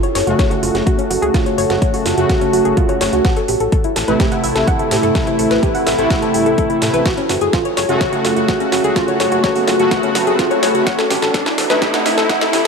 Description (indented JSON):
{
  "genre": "melodic techno",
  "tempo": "126 BPM",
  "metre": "4/4",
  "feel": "straight",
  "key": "unclear",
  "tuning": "A4 = 440 Hz",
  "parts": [
    { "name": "deep dark ambient pad", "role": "sustained chords", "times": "0.0-12.7 s", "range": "E4 to A5", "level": "-21 LUFS", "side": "right 2 dB", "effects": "chorus, built-in reverb, sidechain pumping" },
    { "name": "soft round pluck", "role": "arpeggios", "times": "0.0-12.6 s", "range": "C#4 to F#5", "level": "-19 LUFS", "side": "left 1 dB", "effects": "chorus, sidechain pumping, dub echo" },
    { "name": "house drum kit", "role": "drums", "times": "0.0-12.6 s", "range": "hi-hat, snare drum, toms", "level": "-22 LUFS", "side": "equal", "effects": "high-pass filter on snare, high-pass filter on hats, high-pass filter on toms, high-pass filter on room" },
    { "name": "fat analog bass", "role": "bass", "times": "0.2-12.6 s", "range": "F#1 to A2", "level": "-26 LUFS", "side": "equal", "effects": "sidechain pumping" },
    { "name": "analog synth brass", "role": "stabs", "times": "0.3-12.7 s", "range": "C3 to F#4", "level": "-19 LUFS", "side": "equal", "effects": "chorus, sidechain pumping, dub echo" },
    { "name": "electronic kick drum", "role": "drums", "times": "0.4-12.4 s", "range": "none", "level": "-18 LUFS", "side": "equal", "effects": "none" },
    { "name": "riser", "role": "sound effects", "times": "8.6-12.7 s", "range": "none", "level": "-24 LUFS", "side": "right 1 dB", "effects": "none" }
  ],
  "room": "moderate lush hall reverb, RT60 1.9 s, digital ambience",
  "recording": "high-pass filter",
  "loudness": "-13 LUFS",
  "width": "side -5 dB against mid",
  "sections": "0.0-12.7 A section",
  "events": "build-up 0.0-12.7; drum fill 0.0-12.7; filter sweep 0.0-12.7; riser 8.6-12.7",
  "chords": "0.0 F#m; 3.2 Am; 7.1 F#m; 10.9 Am"
}